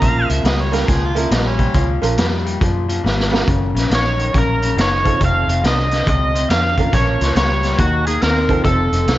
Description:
electric blues shuffle; 139 BPM; 4/4; swing 64% on 8ths; Bb minor; A4 = 436 Hz
overdriven slide guitar; melody; 0.0-0.3, 4.0-9.2 s; Gb4 to Bb5; -19 LUFS; right 1 dB
clear harmonica; second line; 0.0-1.9 s; Db4 to F5; -25 LUFS; right 3 dB; overdrive
tack piano; accompaniment; 0.0-9.0 s; Bb3 to Bb4; -24 LUFS; right 6 dB
electric guitar through a small old amp; riff; 0.0-9.2 s; F2 to C4; -23 LUFS; left 5 dB; spring reverb
vintage muted fingered electric bass; bass; 0.0-9.2 s; F1 to Gb2; -19 LUFS; equal
raw garage drum kit; drums; 0.0-9.2 s; hi-hat, kick drum, snare drum; -19 LUFS; equal
light reverb, studio ambience; nothing above 7.6 kHz; -14 LUFS; side -15 dB against mid
0.0-9.2 A section
drum fill 3.0-3.5
0.0 Bbm; 3.5 Gb; 5.2 F7; 6.9 Bbm; 7.8 Eb5; 8.6 F7
| 0.02 0.45 0.88 1.32 | 1.75 2.18 2.61 3.04 | 3.48 3.91 4.34 4.77 | 5.20 5.63 6.07 6.50 | 6.93 7.36 7.79 8.22 | 8.65 9.07

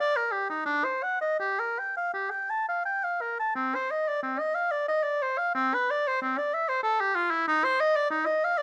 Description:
classical, baroque-style fantasia for unaccompanied oboe; 78-96 BPM; 3/4; rubato; G minor, C minor from 3.6 s; A4 = 440 Hz
clear oboe; solo; 0.0-8.6 s; C4 to A5; -27 LUFS; equal
moderate stone room reverb, RT60 1.0 s; vinyl crackle; -28 LUFS; mono
0.0-3.6 A section; 3.6-8.6 A section
0.00 0.67 | 1.40 2.13 2.86 | 3.56 4.22 4.88 | 5.55 6.22 6.86 | 7.50 8.13

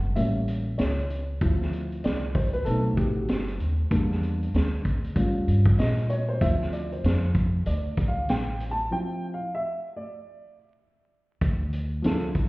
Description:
hip hop, jazz-hop; 96 BPM; 4/4; swing 61% on 16ths; A4 = 444 Hz
dark concert grand piano; accompaniment; 0.0-12.3 s; F3 to A5; -29 LUFS; equal
upright bass; bass; 0.0-12.5 s; F#1 to Bb2; -26 LUFS; equal
vintage drum kit; drums; 0.2-12.5 s; hi-hat, kick drum, snare drum; -28 LUFS; equal
light reverb, small room ambience; heard muffled through a wall, stone room reverb, vinyl crackle, EQ; -23 LUFS; side -21 dB against mid
0.0-1.4 A section; 1.4-11.4 B section; 11.4-12.5 C section
grand piano solo 0.0-1.4, 1.4-11.4; kick muted 0.2-1.4; break 8.9-11.4
0.2 A7b9; 1.4 Dm9; 2.7 B7b9; 3.9 Em7b5; 5.2 Eb9; 6.4 Dm9
0.16 0.79 | 1.41 2.04 2.66 3.29 | 3.91 4.54 5.16 5.79 | 6.41 7.04 7.66 8.29 | 8.91 9.54 10.16 10.79 | 11.41 12.04

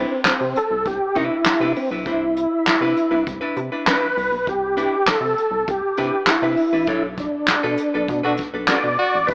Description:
funk; 100 BPM; 4/4; straight; A4 = 440 Hz
tonewheel organ; melody; 0.0-9.3 s; C4 to D5; -20 LUFS; equal; overdrive, chorus vibrato, slow rotary speaker
hollow-body jazz guitar; accompaniment; 0.0-8.9 s; D4 to C#5; -25 LUFS; left 1 dB
rubbery square bass; bass; 0.0-9.3 s; A1 to C3; -29 LUFS; equal
vintage brush drum kit; drums; 0.2-9.3 s; handclaps, hi-hat, kick drum, snare drum; -21 LUFS; equal
brilliant trombone; second line; 8.2-9.2 s; F#4; -23 LUFS; equal; slapback echo
light reverb; AM radio sound; -17 LUFS; side -30 dB against mid
0.0-9.3 A section
band accent 6.9-9.3
0.0 Cmaj9; 6.9 Bm7
0.25 0.86 1.46 | 2.06 2.66 3.27 3.87 | 4.47 5.07 5.67 6.28 | 6.88 7.48 8.08 8.68 | 9.29

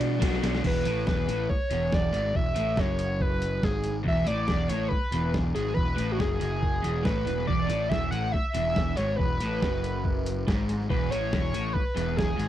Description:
indie rock; 140 BPM; 4/4; straight; E mixolydian; A4 = 440 Hz
overdriven synth lead; melody; 0.0-12.5 s; F#4 to F#5; -30 LUFS; right 1 dB; distortion, chorus, slapback echo
crunchy overdriven guitar; riff; 0.0-12.5 s; E2 to F#4; -31 LUFS; left 1 dB
fuzz picked electric bass; bass; 0.0-12.5 s; E1 to B2; -31 LUFS; equal; overdrive
lo-fi sampler-style drum kit; drums; 0.0-12.5 s; crash cymbal, hi-hat, kick drum, ride cymbal, snare drum; -29 LUFS; equal; overdrive
little or no reverb; dry, close 1970s-style studio recording; -24 LUFS; side -12 dB against mid
0.6-12.5 A section
drum fill 0.2-0.6
0.0 Bm; 0.6 E
0.21 | 0.64 1.06 1.49 1.92 | 2.34 2.77 3.20 3.63 | 4.05 4.48 4.91 5.34 | 5.76 6.19 6.62 7.05 | 7.47 7.90 8.33 8.76 | 9.19 9.61 10.04 10.47 | 10.89 11.32 11.75 12.18

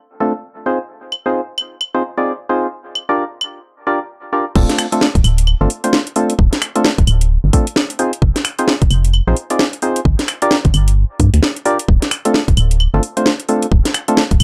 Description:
UK garage, two-step garage; 131 BPM; 4/4; swing 61% on 16ths; D minor; A4 = 440 Hz
percussive organ stab; stabs; 0.2-14.2 s; A3 to D5; -20 LUFS; equal; chorus
house drum kit; drums; 1.1-14.4 s; claves, crash cymbal, finger snaps, hi-hat, snare drum; -19 LUFS; equal
organ-like FM bass; bass; 4.6-14.4 s; D1 to G2; -15 LUFS; equal
electronic kick drum; drums; 4.6-14.4 s; -16 LUFS; equal
light reverb; dark, warm production; -16 LUFS; mono
0.0-4.6 A section; 4.6-14.4 B section
drop 4.6-14.4
0.0 Dm7; 0.7 Fm7; 2.7 Gm7; 4.6 Dm7; 8.0 Fm7; 10.1 Gm7; 11.9 Dm7
0.43 | 0.89 1.35 1.81 2.27 | 2.72 3.18 3.64 4.10 | 4.56 5.01 5.47 5.93 | 6.39 6.85 7.30 7.76 | 8.22 8.68 9.14 9.59 | 10.05 10.51 10.97 11.43 | 11.88 12.34 12.80 13.26 | 13.72 14.17

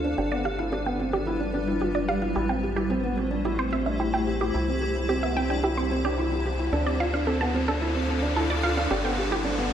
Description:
piano and strings electronica; 110 BPM; 4/4; straight; A4 = 440 Hz
granular cloud pad; sustained chords; 0.0-9.7 s; G3 to F5; -30 LUFS; left 1 dB; built-in reverb
felt-muted upright piano; riff; 0.0-9.7 s; B3 to G4; -28 LUFS; right 1 dB; tape echo
round analog bass; bass; 0.0-9.7 s; G1 to D2; -30 LUFS; equal
wide unison pluck; arpeggios; 0.2-9.4 s; G4 to C6; -30 LUFS; right 2 dB; tape echo
riser; sound effects; 4.8-9.7 s; -35 LUFS; left 2 dB
wet recital hall reverb, RT60 1.6 s, digital ambience; -23 LUFS; side -9 dB against mid
0.0-9.7 A section
build-up 0.0-9.7; filter sweep on synth arpeggio sound 0.0-9.7; riser 4.8-9.7
0.2 G7; 2.4 Am7; 4.5 C; 6.7 Dm7; 8.9 G7
| 0.18 0.73 1.27 1.82 | 2.36 2.91 3.45 4.00 | 4.54 5.09 5.63 6.18 | 6.73 7.27 7.82 8.36 | 8.91 9.45

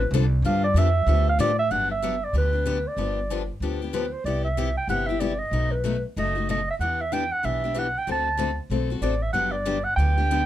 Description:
acoustic string swing (jazz manouche); 189 BPM; 4/4; swing 61% on 8ths; G major; A4 = 438 Hz
mellow clarinet; melody; 0.0-10.5 s; B4 to A5; -25 LUFS; right 2 dB
picked steel-string acoustic guitar; accompaniment; 0.0-10.4 s; B2 to A4; -29 LUFS; left 7 dB
upright bass; bass; 0.0-10.5 s; F#1 to A2; -25 LUFS; equal
light reverb; dark, warm production; -22 LUFS; side -12 dB against mid
0.0-1.7 A section; 1.7-10.5 B section
clarinet solo 0.0-1.7
0.4 G7; 1.7 Gmaj7; 3.0 G7; 4.3 Cmaj7; 5.5 B7; 6.8 Em7; 8.1 D7; 9.3 Gmaj7
0.13 | 0.44 0.76 1.08 1.40 | 1.71 2.03 2.35 2.66 | 2.98 3.30 3.62 3.94 | 4.25 4.57 4.89 5.21 | 5.52 5.84 6.16 6.48 | 6.80 7.11 7.43 7.75 | 8.07 8.38 8.70 9.02 | 9.34 9.66 9.98 10.29

